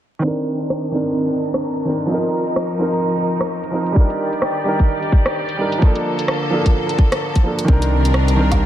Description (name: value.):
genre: future garage.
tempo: 129 BPM.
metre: 4/4.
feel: swing 60% on 16ths.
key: C dorian.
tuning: A4 = 440 Hz.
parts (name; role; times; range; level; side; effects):
warm upright piano; accompaniment; 0.2-8.7 s; Eb3 to Bb4; -20 LUFS; right 1 dB; sidechain pumping, low-pass filter, ping-pong delay.
bright studio string section; sustained chords; 0.2-8.7 s; D3 to D5; -23 LUFS; equal; sidechain pumping, low-pass filter.
garage drum kit; drums; 0.4-8.6 s; hi-hat, rim click, woodblock; -25 LUFS; equal; overdrive, low-pass filter on hats, low-pass filter on snare, low-pass filter on perc.
electronic kick drum; drums; 4.0-8.6 s; none; -13 LUFS; equal; overdrive.
swelling detuned saw bass; bass; 7.7-8.7 s; C2; -15 LUFS; equal; sidechain pumping.
room: moderate plate reverb, RT60 1.9 s.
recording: dreamy mix soaked in reverb, vinyl crackle, low-pass filter.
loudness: -16 LUFS.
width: side -11 dB against mid.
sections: 0.2-7.7 A section.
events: filter sweep on drum 0.2-7.7; filter sweep on string section 0.2-7.7; filter sweep on upright piano 0.2-7.7; filter sweep 0.2-7.7.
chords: 0.2 Cm9; 2.1 F7sus4; 4.0 Ebmaj7; 5.8 Bbmaj7; 7.7 Cm9.